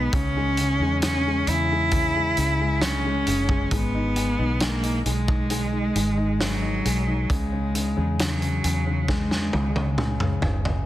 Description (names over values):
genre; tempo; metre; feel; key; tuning
pop ballad; 67 BPM; 4/4; straight; unclear; A4 = 440 Hz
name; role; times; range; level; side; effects
rich cello; melody; 0.0-10.4 s; F#3 to E4; -25 LUFS; right 1 dB; none
warm upright piano; accompaniment; 0.0-10.9 s; C#3 to D#4; -29 LUFS; left 4 dB; none
vintage muted fingered electric bass; bass; 0.0-10.8 s; F#1 to E2; -26 LUFS; equal; none
loose indie drum kit; drums; 0.1-10.9 s; hi-hat, kick drum, snare drum, toms; -26 LUFS; equal; none
room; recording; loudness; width
small room ambience; dense, heavily limited modern master; -21 LUFS; side -14 dB against mid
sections
0.0-10.9 A section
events
drum fill 9.1-10.9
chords
0.1 C#m; 3.7 G#m7; 7.3 C#m